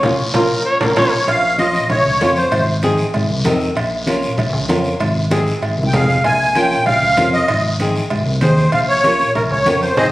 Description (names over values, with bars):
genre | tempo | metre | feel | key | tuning
latin, cumbia | 193 BPM | 4/4 | straight | Bb minor | A4 = 440 Hz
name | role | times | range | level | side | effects
breathy trumpet | melody | 0.0-1.1 s | Bb4 to Db5 | -18 LUFS | equal | none
flamenco guitar | accompaniment | 0.0-10.1 s | Bb3 to Bb4 | -21 LUFS | equal | none
fingered electric bass | bass | 0.0-10.1 s | Ab1 to F2 | -20 LUFS | equal | none
congas | percussion | 0.0-10.0 s | none | -24 LUFS | left 1 dB | none
guiro | percussion | 0.0-10.0 s | none | -29 LUFS | left 1 dB | none
timbales and cowbell | percussion | 0.0-10.0 s | none | -23 LUFS | right 2 dB | none
musette accordion | second line | 1.0-2.7, 5.9-10.1 s | Ab4 to Ab5 | -15 LUFS | equal | none
room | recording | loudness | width
wet large studio reverb, RT60 1.4 s | recorded on a phone in the room, studio reverb | -13 LUFS | side -17 dB against mid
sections
0.0-1.3 A section; 1.3-10.1 B section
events
trumpet solo 0.0-1.3; drum fill 0.0-1.3, 5.3-6.2; band accent 0.0-1.3; accordion solo 1.3-10.1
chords
0.0 Bbm; 2.5 Ab; 3.8 Bbm; 5.0 Ab; 6.2 Bbm; 7.5 Ab; 8.7 Bbm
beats
| 0.04 0.35 0.66 0.97 | 1.28 1.59 1.90 2.21 | 2.52 2.83 3.14 3.45 | 3.76 4.07 4.38 4.69 | 5.00 5.32 5.62 5.94 | 6.25 6.56 6.87 7.18 | 7.49 7.80 8.11 8.42 | 8.73 9.04 9.35 9.66 | 9.98